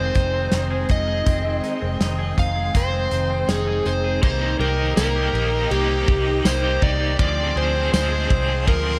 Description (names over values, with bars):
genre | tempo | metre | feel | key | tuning
dream pop | 81 BPM | 4/4 | straight | C minor | A4 = 441 Hz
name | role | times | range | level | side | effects
overdriven slide guitar | melody | 0.0-9.0 s | G4 to F5 | -26 LUFS | equal | delay
phased string machine | sustained chords | 0.0-9.0 s | Eb3 to C6 | -33 LUFS | equal | ensemble chorus, phaser
electric guitar at the edge of break-up | arpeggios | 0.0-9.0 s | F3 to Ab4 | -31 LUFS | equal | subtle chorus, delay
vintage muted fingered electric bass | bass | 0.0-9.0 s | F1 to D2 | -26 LUFS | equal | none
loose indie drum kit | drums | 0.1-8.8 s | crash cymbal, hi-hat, kick drum, ride cymbal, snare drum, tambourine | -24 LUFS | equal | none
cranked stack guitar | accompaniment | 4.2-9.0 s | C3 to Ab4 | -30 LUFS | equal | overdrive, tremolo, subtle chorus
room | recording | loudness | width
moderate concert hall reverb, RT60 2.1 s | none | -21 LUFS | mono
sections
0.0-4.2 A section; 4.2-9.0 B section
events
none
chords
0.0 Fm7; 4.2 Cm7; 7.2 Dm7b5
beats
0.52 | 1.26 2.01 2.75 3.49 | 4.23 4.97 5.71 6.45 | 7.19 7.93 8.67